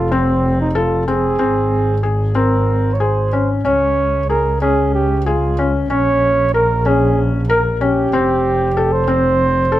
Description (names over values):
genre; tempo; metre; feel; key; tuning
contemporary instrumental, contemporary; 188 BPM (eighths); 7/8; straight; Db lydian; A4 = 440 Hz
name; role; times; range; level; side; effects
mellow flugelhorn; melody; 0.0-9.8 s; C4 to Db5; -18 LUFS; right 4 dB; none
felt-muted upright piano; arpeggios; 0.0-9.8 s; C4 to Bb4; -18 LUFS; left 4 dB; none
dark double bass; bass; 0.0-9.8 s; F1 to Db2; -18 LUFS; equal; none
room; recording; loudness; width
light reverb; close, detailed microphones; -14 LUFS; side -14 dB against mid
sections
0.0-9.8 A section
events
none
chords
0.0 F; 1.4 Ab; 3.7 Db5; 5.9 Bbm; 8.1 F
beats
0.12 0.44 0.76 1.08 | 1.40 1.72 2.04 2.36 2.68 3.00 3.33 | 3.65 3.98 4.30 4.62 4.94 5.26 5.58 | 5.90 6.22 6.54 6.86 7.18 7.50 7.81 | 8.13 8.45 8.76 9.08 9.40 9.72